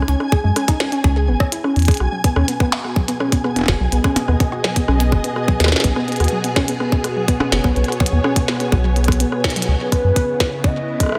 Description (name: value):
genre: IDM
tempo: 125 BPM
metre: 4/4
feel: straight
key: unclear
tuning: A4 = 439 Hz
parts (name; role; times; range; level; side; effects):
- warm sub bass; bass; 0.0-10.1 s; F#1 to F#2; -19 LUFS; equal; none
- glitchy drum kit; drums; 0.0-11.2 s; hi-hat, percussion blips, rim click, snare drum; -24 LUFS; equal; studio reverb, digital delay
- flickering grainy texture; texture; 0.0-9.7 s; G#5; -32 LUFS; equal; built-in reverb
- warbly dusty pluck; arpeggios; 0.1-9.6 s; F#3 to C#5; -25 LUFS; equal; chorus, cassette tape, digital delay
- electronic kick drum; drums; 0.3-11.1 s; none; -19 LUFS; equal; studio reverb
- soft string machine; sustained chords; 2.0-11.2 s; B2 to D#5; -27 LUFS; equal; ensemble chorus, vintage 12-bit sampler grit
- warbly nostalgic lead; melody; 9.9-11.2 s; B4 to E5; -24 LUFS; equal; tremolo, subtle chorus
room: light reverb, digital ambience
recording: none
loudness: -18 LUFS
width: mono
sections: 0.0-9.7 A section; 9.7-11.2 B section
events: drum fill 9.4; band accent 9.4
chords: 0.0 C#5; 2.0 B6; 9.7 C#m9